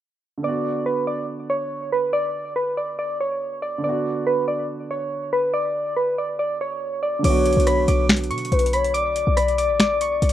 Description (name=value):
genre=hip hop, trap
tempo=141 BPM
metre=4/4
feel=half-time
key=B minor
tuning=A4 = 441 Hz
part: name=soft electric-piano-like synth keys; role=melody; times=0.4-10.3 s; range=B4 to D6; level=-23 LUFS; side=right 1 dB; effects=chorus
part: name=dark baby grand piano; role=accompaniment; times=0.4-10.3 s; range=D3 to F#4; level=-29 LUFS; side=right 5 dB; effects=none
part: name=gliding portamento lead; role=second line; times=7.2-10.3 s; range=B4 to D5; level=-21 LUFS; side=left 5 dB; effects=chorus, digital delay
part: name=short 808-style bass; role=bass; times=7.2-10.3 s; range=A1 to B2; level=-22 LUFS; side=equal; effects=none
part: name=booming analog drum machine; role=drums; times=7.2-10.3 s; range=crash cymbal, finger snaps, hi-hat, rim click, snare drum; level=-22 LUFS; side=equal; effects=none
room=light reverb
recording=rough home demo mix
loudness=-20 LUFS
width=side -12 dB against mid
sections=0.4-7.2 A section; 7.2-10.3 B section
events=none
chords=0.4 Bm